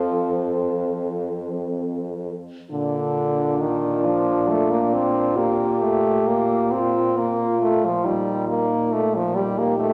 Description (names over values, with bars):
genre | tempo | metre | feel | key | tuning
classical, lyrical piece for horn quartet | 45 BPM (dotted quarters) | 12/8 | rubato | Bb major | A4 = 439 Hz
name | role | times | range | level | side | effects
mellow French horn | melody | 0.0-9.9 s | Eb4 to A4 | -30 LUFS | equal | none
dark French horn | second line | 0.0-9.9 s | C4 to G4 | -27 LUFS | equal | none
warm French horn | accompaniment | 0.0-9.9 s | D3 to C4 | -24 LUFS | equal | none
mellow French horn | bass | 0.0-9.9 s | F2 to Bb2 | -32 LUFS | equal | none
room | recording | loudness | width
wet scoring stage reverb, RT60 1.9 s | none | -22 LUFS | mono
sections
0.0-9.9 A section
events
none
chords
0.0 F; 2.7 Bb; 8.1 Eb/Bb